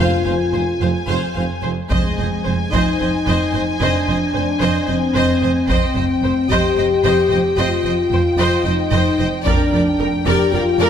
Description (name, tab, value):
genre	cinematic, epic orchestral film score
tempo	223 BPM (eighths)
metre	7/8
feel	straight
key	unclear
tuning	A4 = 440 Hz
part	clear symphonic violin section	melody	0.0-10.9 s	G5 to Ab5	-28 LUFS	left 4 dB	none
part	bright symphonic violin section	second line	0.0-10.9 s	Bb4 to F5	-26 LUFS	left 2 dB	none
part	rich symphonic viola section	accompaniment	0.0-10.9 s	Bb4 to C5	-23 LUFS	right 1 dB	none
part	dark French horn section	sustained chords	0.0-10.9 s	Ab3 to G4	-19 LUFS	left 3 dB	none
part	mellow tuba	bass	0.0-1.7 s	F1	-28 LUFS	right 4 dB	none
part	rich symphonic cello section	bass	0.0-10.9 s	F2	-23 LUFS	right 3 dB	none
part	rich symphonic double bass section	bass	0.0-10.9 s	F1	-23 LUFS	right 3 dB	none
part	timpani	percussion	0.0-2.7 s	F2	-26 LUFS	equal	none
part	solo taiko drums	drums	1.9-10.5 s	none	-23 LUFS	equal	none
room	wet concert hall reverb, RT60 2.2 s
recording	none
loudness	-15 LUFS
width	side -8 dB against mid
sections	0.0-1.9 A section; 1.9-10.9 B section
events	none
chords	0.0 Fm; 1.9 Ab/F; 5.7 Cm/F; 9.5 Gm7/F